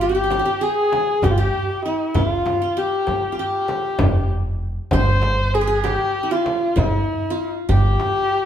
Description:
Turkish makam ensemble; 195 BPM (eighths); 9/8; straight; G makam hicaz; A4 = 439 Hz
dark kamancheh; melody; 0.0-8.5 s; E4-40c to C5; -21 LUFS; left 1 dB
qanun; second line; 0.0-8.5 s; E4-40c to C5; -26 LUFS; right 1 dB
upright bass; bass; 0.0-7.9 s; F1 to G1; -22 LUFS; equal
darbuka; percussion; 0.0-8.4 s; -24 LUFS; equal
frame drum; percussion; 0.3-8.2 s; -25 LUFS; left 1 dB
wet stone room reverb, RT60 1.4 s; band playing live in one room; -17 LUFS; side -9 dB against mid
0.0-8.5 A section
0.00 0.31 0.62 0.93 1.24 1.54 1.85 | 2.16 2.47 2.78 3.09 3.39 3.70 4.01 4.32 4.62 | 4.93 5.24 5.55 5.86 6.16 6.47 6.78 7.09 7.39 | 7.70 8.01 8.32

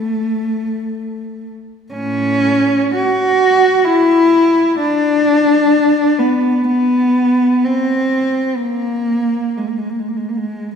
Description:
classical, free, expressive piece for unaccompanied cello; 49-73 BPM; 3/4; rubato; A4 = 445 Hz
dark cello; solo; 0.0-10.8 s; A2 to F#4; -13 LUFS; equal
wet concert hall reverb, RT60 2.1 s; recorded in a church or concert hall; -12 LUFS; side -7 dB against mid
0.0-10.8 A section
0.25 1.08 | 1.93 2.94 3.85 | 4.77 5.71 6.66 | 7.64 8.58 9.60

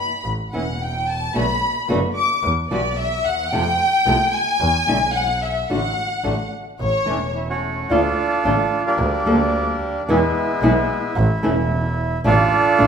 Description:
tango; 110 BPM; 4/4; rubato; A4 = 435 Hz
rich studio violin section; second line; 0.0-7.3 s; C#5 to D6; -20 LUFS; left 2 dB
clear double bass; bass; 0.2-12.9 s; E1 to F2; -24 LUFS; right 1 dB
flamenco guitar; accompaniment; 0.5-12.9 s; B2 to A4; -22 LUFS; equal
bandoneon; melody; 7.1-12.9 s; G3 to A4; -19 LUFS; right 2 dB
wet recital hall reverb, RT60 1.4 s; minimal, uncompressed stereo recording; -17 LUFS; side -7 dB against mid
0.0-7.9 A section; 7.9-12.9 B section
violin section solo 0.0-7.9
0.3 A5; 1.4 Bm7; 2.4 Esus2; 3.5 F; 4.6 E; 5.7 D/A; 6.8 A; 7.9 Dm; 9.0 Gm/D; 10.1 E; 11.2 A5; 12.2 Dm/A
0.26 0.81 | 1.35 1.90 2.44 2.98 | 3.53 4.07 4.61 5.15 | 5.70 6.25 6.79 7.35 | 7.90 8.45 8.99 9.54 | 10.08 10.62 11.16 11.70 | 12.24 12.78

